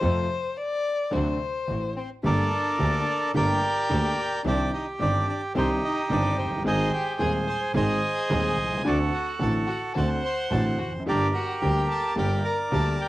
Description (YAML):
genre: tango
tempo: 109 BPM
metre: 4/4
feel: rubato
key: G harmonic minor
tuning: A4 = 441 Hz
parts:
  - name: warm violin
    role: second line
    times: 0.0-13.1 s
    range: C4 to D5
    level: -32 LUFS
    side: left 3 dB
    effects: cassette tape, plate reverb
  - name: warm concert grand piano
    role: accompaniment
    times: 0.0-13.0 s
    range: Eb1 to Ab4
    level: -28 LUFS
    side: left 1 dB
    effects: cassette tape
  - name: bright studio string section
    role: stabs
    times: 0.0-13.0 s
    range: Bb3 to C5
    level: -39 LUFS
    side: right 3 dB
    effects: none
  - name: rich double bass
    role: bass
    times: 0.0-12.9 s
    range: F1 to F2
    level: -28 LUFS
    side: right 1 dB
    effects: none
  - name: bandoneon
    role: melody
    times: 2.0-13.1 s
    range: Eb4 to C6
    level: -26 LUFS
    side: right 1 dB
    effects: cassette tape, plate reverb
room: moderate studio ambience, RT60 0.5 s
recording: home recording on cassette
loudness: -23 LUFS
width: side -16 dB against mid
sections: 0.0-2.2 A section; 2.2-13.1 B section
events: violin solo 0.0-2.2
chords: 0.0 F; 1.1 D7; 2.2 Gmadd9; 4.5 Cmadd9; 6.7 Ab; 8.9 D7; 11.1 Gm